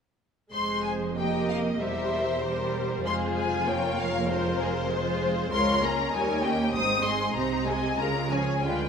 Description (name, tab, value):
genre	quick classical-period movement for string orchestra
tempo	97 BPM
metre	2/4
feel	rubato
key	F minor, Ab major from 5.5 s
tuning	A4 = 440 Hz
part	warm symphonic violin section	melody	0.5-8.9 s	C5 to Eb6	-29 LUFS	left 4 dB	none
part	warm symphonic violin section	second line	0.5-8.9 s	F4 to E5	-31 LUFS	left 2 dB	none
part	warm studio viola section	accompaniment	0.5-8.9 s	F3 to Ab4	-31 LUFS	equal	none
part	warm studio double bass section	bass	0.5-8.9 s	E1 to Eb2	-35 LUFS	right 4 dB	none
part	warm symphonic cello section	bass	0.5-8.9 s	Db2 to D3	-32 LUFS	right 4 dB	none
room	wet scoring stage reverb, RT60 2.0 s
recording	minimal, uncompressed stereo recording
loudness	-24 LUFS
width	side -6 dB against mid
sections	0.5-8.9 A section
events	none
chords	0.5 Fm; 1.2 F9sus4; 1.8 C7/E; 3.1 Fm; 3.7 Bbm/F; 4.3 Fm; 5.5 Bbm7/Db; 6.1 Eb7; 6.7 Ab; 7.4 Ab/C; 8.0 Bbm7/Db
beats	| 0.53 1.17 | 1.81 2.44 | 3.06 3.68 | 4.30 4.92 | 5.53 6.14 | 6.75 7.36 | 7.99 8.64